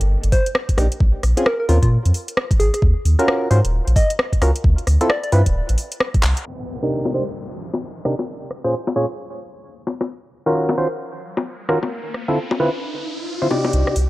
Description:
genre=UK garage, two-step garage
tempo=132 BPM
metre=4/4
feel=swing 61% on 16ths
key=unclear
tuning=A4 = 440 Hz
part: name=saturated sub bass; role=bass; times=0.0-6.3, 13.7-14.1 s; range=D1 to Bb2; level=-16 LUFS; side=equal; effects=none
part: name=garage drum kit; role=drums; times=0.0-14.1 s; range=bongos, crash cymbal, handclaps, hi-hat, rim click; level=-23 LUFS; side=left 1 dB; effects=high-pass filter on snare, small room reverb, high-pass filter on hats, high-pass filter on cymbals, high-pass filter on perc
part: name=soft struck synth lead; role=melody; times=0.3-5.3 s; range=F4 to Eb5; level=-25 LUFS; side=equal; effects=chorus, tremolo, analog delay
part: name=electronic kick drum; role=drums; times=0.3-6.2 s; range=none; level=-17 LUFS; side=equal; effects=small room reverb
part: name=percussive organ stab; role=stabs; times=0.8-14.0 s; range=Bb2 to D5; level=-22 LUFS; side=equal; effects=chorus, analog delay
part: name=downlifter and riser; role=sound effects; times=6.5-14.1 s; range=none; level=-31 LUFS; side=left 1 dB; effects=none
room=light reverb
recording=dry, gritty hardware recording, low-pass filter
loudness=-17 LUFS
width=side -18 dB against mid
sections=0.0-6.5 A section; 6.5-13.7 B section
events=drum fill 6.2; band accent 6.2; filter sweep 6.5-13.7; riser 11.2-13.7, 13.7-14.1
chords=0.0 Cm7 (rootless); 1.0 Bbm7; 2.8 Ebm7; 4.6 Dm7; 6.5 Cm7; 8.3 Bbm7; 10.1 Ebm7; 11.9 Dm7

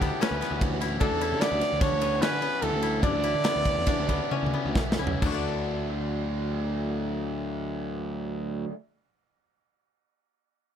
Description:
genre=math rock and midwest emo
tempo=127-150 BPM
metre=5/4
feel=straight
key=D major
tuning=A4 = 439 Hz
part: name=clear trumpet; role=melody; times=0.0-4.7 s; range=G4 to D5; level=-28 LUFS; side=right 2 dB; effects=slapback echo
part: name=koto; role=arpeggios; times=0.0-8.8 s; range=B3 to D5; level=-33 LUFS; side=left 10 dB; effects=none
part: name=biting overdriven guitar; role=riff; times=0.0-8.7 s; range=A2 to E4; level=-34 LUFS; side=right 1 dB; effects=none
part: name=fuzz picked electric bass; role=bass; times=0.0-8.6 s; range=G1 to D3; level=-31 LUFS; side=equal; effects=overdrive
part: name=modern studio drum kit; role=drums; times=0.0-5.3 s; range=crash cymbal, kick drum, ride cymbal, snare drum, toms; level=-29 LUFS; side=equal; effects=none
room=light reverb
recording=none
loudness=-25 LUFS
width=side -8 dB against mid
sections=0.0-5.2 A section; 5.2-9.9 B section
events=slowing down 1.8-5.2; drum fill 4.3-5.2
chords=0.0 A7sus4; 5.2 D

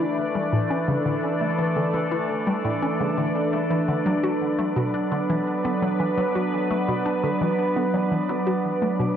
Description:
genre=ambient, sequencer-driven space music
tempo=85 BPM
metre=4/4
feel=straight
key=unclear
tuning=A4 = 442 Hz
part: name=evolving wavetable pad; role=sustained chords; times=0.0-9.2 s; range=E3 to D5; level=-23 LUFS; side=equal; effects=chorus, built-in reverb, cassette tape
part: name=hollow square pluck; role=riff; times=0.0-9.1 s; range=A2 to F#4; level=-27 LUFS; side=left 1 dB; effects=chorus, phaser, cassette tape, tape echo
part: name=wind-like tuned noise texture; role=texture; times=0.0-9.2 s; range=B4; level=-34 LUFS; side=left 1 dB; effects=built-in reverb, cassette tape
room=wet spring reverb, RT60 1.4 s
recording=home recording on cassette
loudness=-21 LUFS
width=side -9 dB against mid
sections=0.0-9.2 A section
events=none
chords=0.0 Asus4; 4.1 Bm

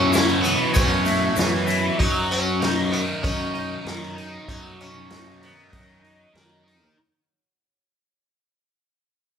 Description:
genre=psychedelic rock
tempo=97 BPM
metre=4/4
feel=straight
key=unclear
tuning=A4 = 440 Hz
part: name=sitar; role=melody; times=0.0-6.6 s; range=F#3 to D#4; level=-25 LUFS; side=left 2 dB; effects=none
part: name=tonewheel organ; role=sustained chords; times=0.0-2.0 s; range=F#3 to D#5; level=-35 LUFS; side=right 5 dB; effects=none
part: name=thick fuzz guitar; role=riff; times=0.0-7.0 s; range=F#3 to D#5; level=-24 LUFS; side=equal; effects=distortion, phaser
part: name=fuzz picked electric bass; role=bass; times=0.0-6.9 s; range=F#2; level=-28 LUFS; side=right 1 dB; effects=overdrive
part: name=vintage drum kit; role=drums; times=0.1-6.8 s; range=hi-hat, kick drum, snare drum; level=-26 LUFS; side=equal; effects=none
part: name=tube shaker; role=percussion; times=0.1-1.8 s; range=none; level=-35 LUFS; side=left 7 dB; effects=none
room=moderate large studio reverb, RT60 1.1 s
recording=band playing live in one room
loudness=-19 LUFS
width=side -7 dB against mid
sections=0.0-7.0 A section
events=fade-out 0.0-7.0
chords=0.0 F#7sus4; 2.0 D#m/F#

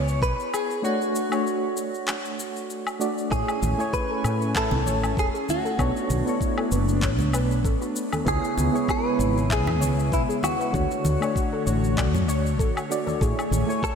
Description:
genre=sunset chillout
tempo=97 BPM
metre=4/4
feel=swing 54% on 16ths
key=unclear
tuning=A4 = 441 Hz
part: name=direct-recorded clean electric guitar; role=melody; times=0.0-13.9 s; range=E4 to C#5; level=-28 LUFS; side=equal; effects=wide subtle chorus, analog delay
part: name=soft electric-piano-like synth keys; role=accompaniment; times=0.0-13.9 s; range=A3 to G#5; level=-29 LUFS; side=moving between left 2 dB and right 4 dB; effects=chorus, tremolo, auto-pan, analog delay
part: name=woody fretless electric bass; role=bass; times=0.0-13.6 s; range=E1 to A2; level=-25 LUFS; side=equal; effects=wide subtle chorus
part: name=electronic shaker, woodblock and handclaps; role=drums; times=0.1-13.9 s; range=none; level=-33 LUFS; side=left 2 dB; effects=none
part: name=electronic kick drum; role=drums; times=0.2-13.9 s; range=none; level=-27 LUFS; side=equal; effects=none
part: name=airy breathy pad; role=sustained chords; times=3.3-13.9 s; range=C#3 to G#5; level=-30 LUFS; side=left 1 dB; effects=chorus
part: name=soft round pluck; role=arpeggios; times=3.3-13.4 s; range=F#4 to E5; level=-34 LUFS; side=left 3 dB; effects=ensemble chorus, analog delay
part: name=congas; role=percussion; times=3.6-13.7 s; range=none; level=-33 LUFS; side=right 1 dB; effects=none
room=moderate lush hall reverb, RT60 2.7 s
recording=dreamy mix soaked in reverb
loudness=-22 LUFS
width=side -6 dB against mid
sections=0.0-13.9 A section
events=none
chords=0.0 C#m7; 0.8 Dmaj7; 3.3 Amaj7; 5.8 Bm9; 8.3 C#m7; 10.7 Dmaj7; 13.2 Amaj7

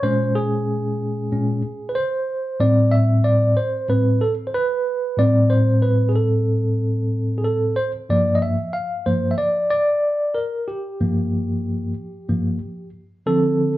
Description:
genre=hip hop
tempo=93 BPM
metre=4/4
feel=swing 63% on 16ths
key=unclear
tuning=A4 = 441 Hz
part: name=tine electric piano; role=solo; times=0.0-13.8 s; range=G2 to F5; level=-18 LUFS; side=equal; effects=fast tremolo
room=wet large studio reverb, RT60 1.1 s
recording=band playing live in one room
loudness=-18 LUFS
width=side -15 dB against mid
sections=0.0-13.3 A section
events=tine electric piano solo 0.0-13.3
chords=0.0 Bbm9; 2.6 Am9; 8.1 Gm7; 13.3 Dm7

